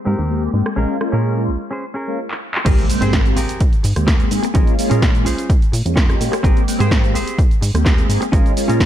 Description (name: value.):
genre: filtered disco house.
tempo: 127 BPM.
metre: 4/4.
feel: straight.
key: Ab major.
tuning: A4 = 435 Hz.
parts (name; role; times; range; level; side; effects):
mellow synth brass; accompaniment; 0.1-8.9 s; Ab3 to G5; -22 LUFS; equal; chorus, phaser, sidechain pumping, low-pass filter.
semi-hollow electric guitar; riff; 0.1-8.8 s; C4 to C5; -25 LUFS; right 1 dB; sidechain pumping, low-pass filter.
plucky analog bass; bass; 0.1-8.9 s; Ab1 to Bb2; -19 LUFS; equal; sidechain pumping, low-pass filter.
punchy analog drum machine; drums; 0.7-8.9 s; crash cymbal, handclaps, hi-hat, rim click, shaker, snare drum; -24 LUFS; equal; low-pass filter on snare, sidechain pumping on hats, low-pass filter on hats, sidechain pumping on cymbals, low-pass filter on cymbals, sidechain pumping on perc, low-pass filter on perc.
electronic kick drum; drums; 2.7-8.9 s; none; -15 LUFS; equal; none.
impact; sound effects; 2.7-4.6 s; none; -25 LUFS; equal; none.
room: light reverb, digital ambience.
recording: dark, warm production.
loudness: -14 LUFS.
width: side -11 dB against mid.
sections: 0.0-2.7 A section; 2.7-8.9 B section.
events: filter sweep 0.0-2.7; drum fill 2.3-2.7; drop 2.7-8.9; impact 2.7-4.6.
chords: 0.0 Abmaj9; 0.8 Bbm7; 2.7 Abmaj9; 4.6 Bbm7; 6.4 Abmaj9; 8.3 Bbm7.